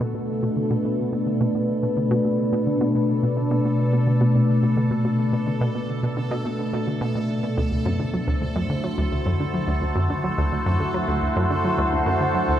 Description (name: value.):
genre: ambient, sequencer-driven space music.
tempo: 107 BPM.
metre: 4/4.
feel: straight.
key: B phrygian.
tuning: A4 = 439 Hz.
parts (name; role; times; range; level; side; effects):
evolving wavetable pad; sustained chords; 0.0-12.6 s; B2 to C5; -22 LUFS; equal; phaser, built-in reverb.
analog pluck; riff; 0.0-12.5 s; D2 to F#3; -25 LUFS; equal; chorus, tape echo.
bubbling stepped-filter texture; texture; 0.0-12.6 s; A4; -37 LUFS; right 1 dB; chorus, built-in reverb.
room: wet cathedral reverb, RT60 7.3 s.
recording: dreamy mix soaked in reverb.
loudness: -20 LUFS.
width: side -11 dB against mid.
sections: 0.0-12.6 A section.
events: fade-in on synth texture 0.0-12.6; filter sweep on synth arpeggio sound 0.0-12.6.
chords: 0.0 Bm7; 7.6 D7.